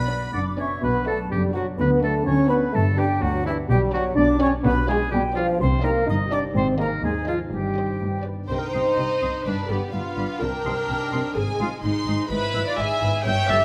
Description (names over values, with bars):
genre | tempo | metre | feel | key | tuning
cinematic, playful, whimsical film cue | 126 BPM | 2/4 | straight | B minor, C minor from 4.7 s | A4 = 438 Hz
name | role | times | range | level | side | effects
clear studio violin section | second line | 0.0-13.6 s | Ab3 to B5 | -37 LUFS | equal | none
hollow small flute group | second line | 0.0-13.6 s | D5 to E6 | -34 LUFS | equal | none
warm oboe | second line | 0.0-13.6 s | E4 to C6 | -34 LUFS | equal | none
dark French horn section | sustained chords | 0.0-13.6 s | E3 to E4 | -27 LUFS | equal | none
concert harp | arpeggios | 0.0-13.6 s | G2 to D5 | -34 LUFS | equal | none
dark studio cello section | bass | 0.0-13.6 s | D2 to D3 | -31 LUFS | equal | none
warm studio double bass section | bass | 0.0-13.6 s | F#1 to Eb2 | -30 LUFS | equal | none
dark studio violin section | melody | 0.1-13.6 s | B4 to C6 | -37 LUFS | equal | none
warm studio viola section | accompaniment | 0.1-13.6 s | B3 to G5 | -29 LUFS | equal | none
room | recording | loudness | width
moderate scoring stage reverb, RT60 2.0 s | none | -23 LUFS | mono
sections
0.8-8.5 A section; 8.5-13.6 B section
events
none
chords
0.0 Bm; 1.8 Bm/D; 2.8 G; 3.7 G/B; 4.7 G7/B; 5.6 Cm; 6.6 Ab; 7.5 Cm/G; 8.0 G; 8.5 Cm; 9.5 G7; 10.4 Cm; 11.4 Ab; 12.3 E/G#